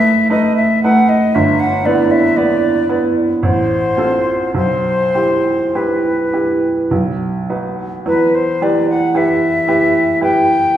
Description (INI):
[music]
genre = classical, romantic duo for flute and grand piano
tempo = 50-59 BPM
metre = 3/4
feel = rubato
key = E minor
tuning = A4 = 442 Hz
[part]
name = silver concert flute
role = melody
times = 0.0-10.8 s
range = B4 to G5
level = -16 LUFS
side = left 2 dB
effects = none
[part]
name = bright baby grand piano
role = accompaniment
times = 0.0-10.8 s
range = F#1 to B4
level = -14 LUFS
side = right 2 dB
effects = none
[sound]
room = wet recital hall reverb, RT60 1.5 s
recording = heard from further back in the room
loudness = -12 LUFS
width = side -11 dB against mid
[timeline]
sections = 0.0-10.8 A section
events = none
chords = 0.0 B7/F#; 1.3 Em/G; 3.4 F/A; 4.5 Em/B; 6.9 B; 8.1 Em